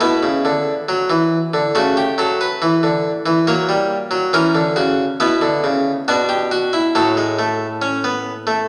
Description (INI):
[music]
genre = classical, baroque-style 3-part fugue for harpsichord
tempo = 69 BPM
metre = 4/4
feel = straight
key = B minor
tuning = A4 = 440 Hz
[part]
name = harpsichord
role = solo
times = 0.0-8.7 s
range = A2 to C#5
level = -17 LUFS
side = equal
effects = none
[sound]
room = wet recital hall reverb, RT60 1.5 s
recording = none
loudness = -17 LUFS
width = mono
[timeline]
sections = 0.0-8.7 A section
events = none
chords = 0.0 Bm; 1.8 C#dim; 3.5 F#; 5.2 Bm; 6.9 N.C.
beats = | 0.02 0.89 1.75 2.61 | 3.47 4.33 5.19 6.06 | 6.93 7.81